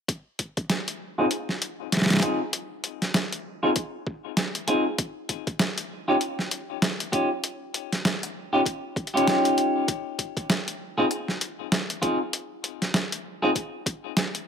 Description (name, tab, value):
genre	glitch hop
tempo	98 BPM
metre	4/4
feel	swing 59% on 16ths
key	F minor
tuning	A4 = 440 Hz
part	boom bap sampler-style drum kit	drums	0.1-14.4 s	hi-hat, snare drum	-25 LUFS	equal	none
part	electronic kick drum	drums	0.1-14.0 s	none	-31 LUFS	equal	high-pass filter on kick
part	semi-hollow electric guitar	stabs	1.2-13.5 s	C4 to Ab4	-25 LUFS	equal	vintage 12-bit sampler grit, sidechain pumping, low-pass filter, ping-pong delay
room	moderate plate reverb, RT60 1.6 s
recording	none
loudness	-24 LUFS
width	side -7 dB against mid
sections	0.1-14.5 A section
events	filter sweep on clean electric guitar 0.1-14.5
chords	0.1 Fm7; 5.0 Eb9; 9.9 Fm7